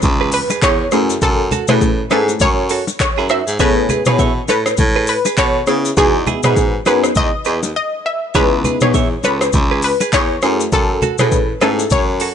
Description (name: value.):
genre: afrobeats.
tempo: 101 BPM.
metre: 4/4.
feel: swing 58% on 16ths.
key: unclear.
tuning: A4 = 439 Hz.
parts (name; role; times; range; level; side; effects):
clear baritone saxophone; bass; 0.0-12.3 s; C#2 to C#3; -19 LUFS; equal; none.
afro-pop drum kit; drums; 0.0-12.3 s; handclaps, hi-hat, kick drum, rim click, shaker, toms; -18 LUFS; equal; overdrive.
bongos and congas; percussion; 0.0-12.1 s; none; -25 LUFS; left 2 dB; none.
downlifter; sound effects; 0.0-3.6 s; none; -34 LUFS; left 1 dB; none.
direct-recorded clean electric guitar; riff; 0.2-12.3 s; D#4 to E5; -22 LUFS; right 11 dB; ping-pong delay.
analog pluck; melody; 0.3-12.3 s; G#4 to E5; -19 LUFS; left 3 dB; chorus.
warm analog keys; accompaniment; 0.9-11.9 s; A3 to G#4; -19 LUFS; left 2 dB; chorus.
room: digital ambience.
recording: nothing above 10.4 kHz.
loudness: -13 LUFS.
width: side -8 dB against mid.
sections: 0.0-12.3 A section.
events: break 7.8-8.3.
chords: 0.0 C#m7; 0.9 F#m7; 3.6 Amaj7; 6.0 Emaj7; 8.3 C#m7; 10.4 F#m7.